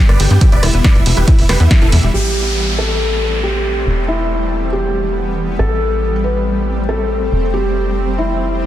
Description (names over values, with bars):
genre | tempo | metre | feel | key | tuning
uplifting trance | 139 BPM | 4/4 | straight | A minor | A4 = 440 Hz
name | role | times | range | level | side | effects
big supersaw lead | melody | 0.0-2.1 s | E4 to D5 | -22 LUFS | right 2 dB | sidechain pumping, digital delay
shimmering ambient pad | sustained chords | 0.1-8.7 s | E3 to C4 | -22 LUFS | equal | chorus, built-in reverb, sidechain pumping
analog pluck | arpeggios | 0.1-2.1 s | B2 to E4 | -24 LUFS | left 3 dB | ensemble chorus, sidechain pumping, digital delay
tight sequencer bass | bass | 0.1-8.7 s | E1 to G2 | -17 LUFS | equal | sidechain pumping
punchy analog drum machine | drums | 0.1-2.1 s | hi-hat, ride cymbal, rim click, snare drum | -19 LUFS | right 1 dB | low-pass filter on hats, low-pass filter on cymbals, low-pass filter on snare
electronic kick drum | drums | 0.4-1.8 s | none | -10 LUFS | equal | none
felt-muted upright piano | second line | 2.1-8.7 s | E4 to B4 | -19 LUFS | left 1 dB | dub echo
downlifter | sound effects | 2.1-5.6 s | none | -23 LUFS | equal | none
room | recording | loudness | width
light reverb, digital ambience | dense, heavily limited modern master | -12 LUFS | side -12 dB against mid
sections
0.0-2.1 A section; 2.1-8.7 B section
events
drop 0.0-2.1; band accent 1.7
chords
0.4 Em; 2.1 Am7; 3.9 Em; 5.6 Am7; 7.3 Fsus2